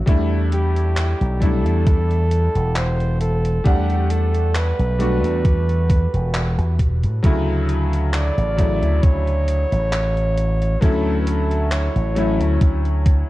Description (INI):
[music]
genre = vaporwave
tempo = 67 BPM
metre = 4/4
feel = swing 54% on 16ths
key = D major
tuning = A4 = 437 Hz
[part]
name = clear electric grand piano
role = accompaniment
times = 0.0-13.3 s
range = C#3 to F#5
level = -24 LUFS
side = left 2 dB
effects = lush chorus
[part]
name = slap bass with an envelope filter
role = bass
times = 0.1-13.2 s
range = E1 to A2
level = -19 LUFS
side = equal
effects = none
[part]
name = electronic kick drum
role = drums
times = 0.1-13.3 s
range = none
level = -15 LUFS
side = equal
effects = none
[part]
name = gated 80s digital drum machine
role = drums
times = 0.1-13.3 s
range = handclaps, hi-hat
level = -30 LUFS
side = equal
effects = gated reverb
[part]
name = clear flugelhorn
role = melody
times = 0.5-12.6 s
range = G4 to D5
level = -26 LUFS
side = right 1 dB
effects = vintage 12-bit sampler grit, tape echo
[sound]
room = light reverb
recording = dark, warm production, cassette tape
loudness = -16 LUFS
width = side -17 dB against mid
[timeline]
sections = 0.0-13.3 A section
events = none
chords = 0.1 A9sus4/E; 3.7 Em11; 7.2 Dmaj7